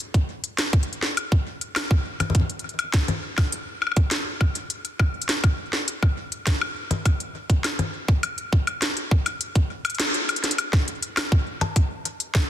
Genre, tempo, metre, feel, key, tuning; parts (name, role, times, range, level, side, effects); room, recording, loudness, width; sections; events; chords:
IDM; 102 BPM; 4/4; straight
organic electronic drum kit; drums; 0.0-12.5 s; congas, hi-hat, snare drum, woodblock; -25 LUFS; left 2 dB; digital delay
electronic kick drum; drums; 0.1-12.5 s; -21 LUFS; equal
light reverb; dense, heavily limited modern master; -21 LUFS; side -11 dB against mid
0.0-10.6 A section; 10.6-12.5 B section
kick drops out 10.0-10.6; band accent 10.0; drum fill 10.3